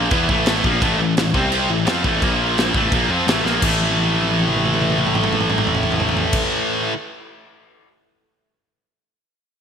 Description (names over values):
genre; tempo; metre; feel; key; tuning
heavy metal; 171 BPM; 4/4; straight; A phrygian; A4 = 440 Hz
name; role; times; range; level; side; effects
heavy high-gain guitar; riff; 0.0-6.9 s; A2 to F4; -21 LUFS; left 9 dB; distortion
heavy high-gain guitar; riff; 0.0-6.9 s; A2 to F4; -21 LUFS; right 10 dB; distortion
fuzz picked electric bass; bass; 0.0-6.4 s; A1 to F2; -23 LUFS; equal; overdrive
modern studio drum kit; drums; 0.1-7.9 s; china cymbal, crash cymbal, kick drum, snare drum, toms; -22 LUFS; equal; gated reverb
room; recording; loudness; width
moderate lush hall reverb, RT60 1.9 s, small room ambience; bright 1980s-style digital production; -16 LUFS; side -7 dB against mid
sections
0.0-3.6 A section; 3.6-6.4 B section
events
drum fill 3.4, 3.8-6.3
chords
0.1 A5; 1.3 C5; 1.7 Am; 2.2 Bb5; 2.7 Am; 3.6 A5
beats
0.12 0.47 | 0.82 1.17 1.52 1.87 | 2.22 2.57 2.92 3.27 | 3.62 3.97 4.32 4.67 | 5.02 5.37 5.72 6.08